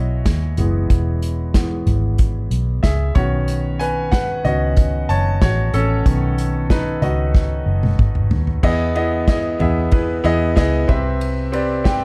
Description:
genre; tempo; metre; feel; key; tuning
piano-driven pop; 93 BPM; 4/4; straight; E major; A4 = 440 Hz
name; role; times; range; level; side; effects
clear grand piano; accompaniment; 0.0-12.0 s; B2 to A5; -23 LUFS; equal; none
vintage muted fingered electric bass; bass; 0.0-12.0 s; E1 to E2; -22 LUFS; equal; none
unplugged drum kit; drums; 0.3-12.0 s; crash cymbal, hi-hat, kick drum, ride cymbal, snare drum, toms; -21 LUFS; equal; none
room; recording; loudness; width
studio reverb; dark, warm production; -18 LUFS; mono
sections
0.0-8.6 A section; 8.6-12.0 B section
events
grand piano solo 0.0-8.6; drum fill 7.3-8.6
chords
0.0 E; 3.2 Badd9; 8.6 Emaj7; 10.9 Cmaj7

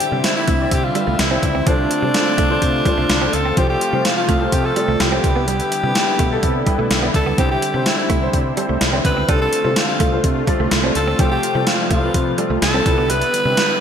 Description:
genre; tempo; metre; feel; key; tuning
1980s-style pop; 126 BPM; 4/4; straight; C major; A4 = 440 Hz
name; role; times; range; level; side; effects
raspy alto saxophone; melody; 0.0-13.8 s; D4 to B4; -21 LUFS; equal; none
warm grand piano; accompaniment; 0.0-13.8 s; C3 to D5; -24 LUFS; left 2 dB; ensemble chorus
brassy analog pad; sustained chords; 0.0-13.8 s; C3 to E5; -24 LUFS; right 1 dB; chorus
direct-recorded clean electric guitar; riff; 0.0-13.5 s; F3 to D4; -26 LUFS; right 5 dB; ensemble chorus, ping-pong delay
gated 80s digital drum machine; drums; 0.0-13.7 s; hi-hat, kick drum, snare drum; -19 LUFS; equal; gated reverb, gated reverb snare, overdrive
mellow fretless electric bass; bass; 0.1-13.5 s; B1 to C3; -23 LUFS; equal; none
room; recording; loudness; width
wet lush hall reverb, RT60 1.7 s; bright 1980s-style digital production; -15 LUFS; side -8 dB against mid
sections
0.0-13.8 A section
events
none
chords
0.0 Cadd9; 1.7 Dm7/C; 3.6 F/C; 5.2 G6/C; 7.4 Cadd9; 9.3 Dm7/C; 11.2 F/C; 12.9 G6/C

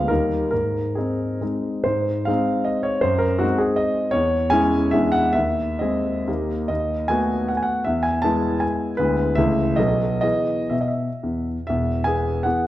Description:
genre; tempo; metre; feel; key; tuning
classical, romantic triple-time dance for piano with dotted rhythms; 117-175 BPM; 3/4; rubato; Ab major, E major from 6.7 s; A4 = 440 Hz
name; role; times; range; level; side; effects
clear concert grand piano; solo; 0.0-12.7 s; E1 to A5; -19 LUFS; equal; none
room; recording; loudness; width
wet recital hall reverb, RT60 1.4 s; dark, warm production; -19 LUFS; side -14 dB against mid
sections
0.0-1.9 A section; 1.9-11.7 A section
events
none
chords
0.1 Eb; 0.5 Ab; 3.1 Ab7/Gb; 4.2 Dbm/Fb; 4.9 E7; 5.4 Ab/Eb; 6.3 Eb; 6.7 B7/D#; 7.9 E; 9.0 E7/D; 9.4 A/C#; 9.8 B7; 10.2 E

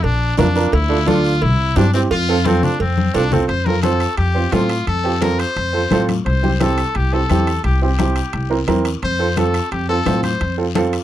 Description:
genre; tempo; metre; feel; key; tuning
latin, cumbia; 174 BPM; 4/4; straight; F major; A4 = 440 Hz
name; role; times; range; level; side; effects
bright trumpet; second line; 0.0-10.6 s; C4 to C5; -22 LUFS; left 2 dB; none
upright bass; bass; 0.0-11.0 s; Bb1 to A2; -19 LUFS; left 1 dB; none
congas; percussion; 0.0-10.9 s; none; -22 LUFS; left 5 dB; none
cowbell and timbales; percussion; 0.0-11.0 s; none; -26 LUFS; right 7 dB; none
guiro; percussion; 0.0-11.0 s; none; -34 LUFS; left 16 dB; none
warm upright piano; accompaniment; 0.4-10.9 s; C4 to C5; -19 LUFS; right 5 dB; none
room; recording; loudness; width
little or no reverb; dry, close 1970s-style studio recording; -15 LUFS; side -12 dB against mid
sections
0.0-3.5 A section; 3.5-11.0 B section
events
drum fill 3.0-3.5; trumpet solo 3.5-11.0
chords
0.0 Bb; 0.7 Dm; 1.4 C; 2.1 F; 6.3 C; 9.0 F

